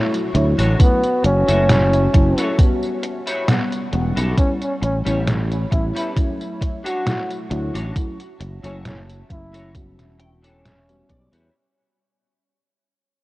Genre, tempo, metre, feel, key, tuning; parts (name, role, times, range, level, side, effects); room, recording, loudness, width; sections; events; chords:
vaporwave; 67 BPM; 4/4; swing 53% on 16ths; E dorian; A4 = 440 Hz
mellow FM electric piano; accompaniment; 0.0-11.5 s; F#3 to F#5; -26 LUFS; equal; lush chorus, analog delay
warbly tape-like pad; sustained chords; 0.1-11.5 s; G3 to C#6; -33 LUFS; left 2 dB; chorus, built-in reverb, phaser
detuned 8-bit digital drum machine; drums; 0.1-11.5 s; hi-hat, snare drum, tambourine; -23 LUFS; equal; studio reverb
electric guitar at the edge of break-up; riff; 0.3-11.5 s; C#4 to G5; -30 LUFS; left 1 dB; ensemble chorus, vintage 12-bit sampler grit, analog delay
sustaining fretless electric bass; bass; 0.3-11.5 s; E1 to E2; -20 LUFS; equal
breathy flugelhorn; melody; 0.8-11.3 s; B3 to F#4; -23 LUFS; equal; vintage 12-bit sampler grit, tape echo
electronic kick drum; drums; 0.8-11.3 s; -16 LUFS; equal; overdrive, studio reverb
light reverb; worn, warbling old tape, cassette tape, warbly pitch drift; -16 LUFS; side -19 dB against mid
0.0-11.5 A section
fade-out 2.0-11.5; clean electric guitar fill 9.7-11.5
0.0 Dmaj7; 0.8 F#m7; 2.6 Em69; 4.4 A9; 6.2 Dmaj7; 8.0 F#m7; 9.7 Em69